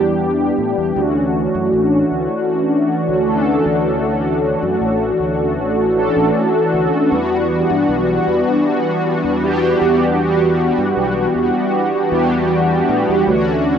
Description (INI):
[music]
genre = vaporwave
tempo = 78 BPM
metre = 4/4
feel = straight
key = E dorian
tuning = A4 = 440 Hz
[part]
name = mellow synth brass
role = accompaniment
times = 0.0-13.8 s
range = E3 to A4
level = -14 LUFS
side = equal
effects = analog chorus, analog delay, plate reverb
[part]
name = overdriven fingered electric bass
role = bass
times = 0.0-13.8 s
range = A1 to A2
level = -25 LUFS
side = equal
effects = tube saturation
[sound]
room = wet studio ambience, RT60 0.5 s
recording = rough home demo mix, cassette tape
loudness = -14 LUFS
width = side -8 dB against mid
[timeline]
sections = 0.0-13.8 A section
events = none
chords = 0.0 Em7; 1.0 Dmaj9; 7.1 Em9; 13.3 Dmaj9